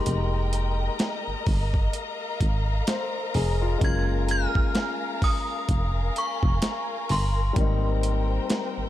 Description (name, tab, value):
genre	contemporary R&B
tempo	64 BPM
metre	4/4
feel	swing 58% on 16ths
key	F minor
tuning	A4 = 439 Hz
part	synth chime	melody	0.0-8.5 s	C6 to Ab6	-32 LUFS	equal	ensemble chorus, ping-pong delay
part	warm concert grand piano	accompaniment	0.0-8.9 s	G3 to C5	-32 LUFS	left 6 dB	none
part	warm studio string section	sustained chords	0.0-8.9 s	Bb4 to Bb5	-32 LUFS	left 2 dB	none
part	solid FM bass	bass	0.1-8.9 s	F1 to Ab1	-25 LUFS	equal	none
part	dusty soul sampler-style drum kit	drums	0.1-8.8 s	hi-hat, kick drum, snare drum	-26 LUFS	equal	overdrive
room	digital ambience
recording	none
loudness	-23 LUFS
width	side -13 dB against mid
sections	0.0-8.9 A section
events	none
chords	0.0 Fm11; 3.8 Gbmaj9; 7.6 Abmaj9